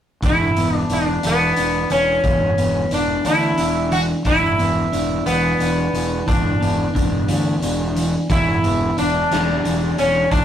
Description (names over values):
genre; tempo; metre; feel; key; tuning
psychedelic rock; 59 BPM (dotted quarters); 6/8; straight; unclear; A4 = 440 Hz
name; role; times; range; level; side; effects
clean electric guitar; riff; 0.2-10.4 s; E3 to D4; -23 LUFS; equal; none
fuzz fingered electric bass; bass; 0.2-10.4 s; E1 to D2; -24 LUFS; equal; overdrive
raw garage drum kit; drums; 0.2-10.4 s; hi-hat, kick drum, snare drum; -23 LUFS; equal; none
sitar; melody; 0.3-10.4 s; B3 to F#4; -19 LUFS; equal; slapback echo
room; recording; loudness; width
wet booth ambience, RT60 0.2 s; rough rehearsal-room recording, warm saturation; -16 LUFS; side -10 dB against mid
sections
0.2-10.4 A section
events
none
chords
0.2 E5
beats
| 0.22 1.23 | 2.24 3.25 | 4.26 5.27 | 6.28 7.29 | 8.30 9.31 | 10.32